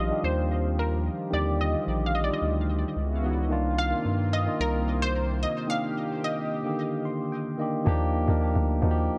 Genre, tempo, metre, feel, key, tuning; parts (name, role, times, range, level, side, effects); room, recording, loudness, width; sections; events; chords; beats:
amapiano; 110 BPM; 4/4; straight; Eb major; A4 = 441 Hz
analog pluck; melody; 0.0-7.0 s; Bb4 to F5; -33 LUFS; equal; chorus, low-pass filter, tape echo
tine electric piano; accompaniment; 0.0-9.2 s; D3 to C6; -32 LUFS; equal; low-pass filter, tape echo
warm analog pad; sustained chords; 0.0-7.8 s; C3 to G4; -39 LUFS; equal; chorus, low-pass filter
saturated sub bass; bass; 0.0-5.5 s; Bb1 to G2; -30 LUFS; equal
deep log drum bass; bass; 7.9-9.1 s; D2 to Eb2; -26 LUFS; equal
moderate spring reverb, RT60 1.8 s, digital ambience; echo-heavy mix; -27 LUFS; mono
0.0-7.9 A section; 7.9-9.2 B section
filter sweep 0.0-7.9; break 5.7-7.9; tine electric piano fill 6.8-7.9; drop 7.9-9.2
0.0 Ebmaj9; 3.0 Dbm11; 3.5 Cm11; 7.9 Ebmaj9
0.23 0.78 | 1.32 1.87 2.41 2.96 | 3.50 4.05 4.59 5.14 | 5.68 6.23 6.78 7.32 | 7.87 8.41 8.96